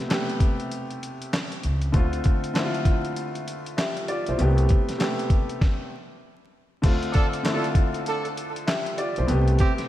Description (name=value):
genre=hip hop, boom-bap hip-hop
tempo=98 BPM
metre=4/4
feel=swing 62% on 16ths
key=unclear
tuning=A4 = 439 Hz
part: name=warm upright piano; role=accompaniment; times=0.0-9.9 s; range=B2 to E5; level=-27 LUFS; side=left 1 dB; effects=high-pass filter, low-pass filter
part: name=dusty soul sampler-style drum kit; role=drums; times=0.1-9.9 s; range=crash cymbal, handclaps, hi-hat, kick drum, snare drum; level=-24 LUFS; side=equal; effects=none
part: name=upright bass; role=bass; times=1.6-9.5 s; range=B1 to D2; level=-22 LUFS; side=equal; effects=none
part: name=dark trumpet section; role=stabs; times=7.1-9.7 s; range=C4 to A4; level=-29 LUFS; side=right 3 dB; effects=high-pass filter, low-pass filter, analog delay
room=moderate lush hall reverb, RT60 2.0 s, small room reverb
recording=dreamy mix soaked in reverb, vinyl crackle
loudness=-22 LUFS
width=side -14 dB against mid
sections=0.0-6.8 A section; 6.8-9.9 B section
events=stop 5.6-6.8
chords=0.0 Am7/C; 1.9 Dm7; 4.4 Am7/C; 6.8 Dm7; 9.3 Am7/C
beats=0.10 0.72 1.33 | 1.94 2.55 3.17 3.78 | 4.39 5.00 5.62 6.23 | 6.84 7.45 8.06 8.68 | 9.29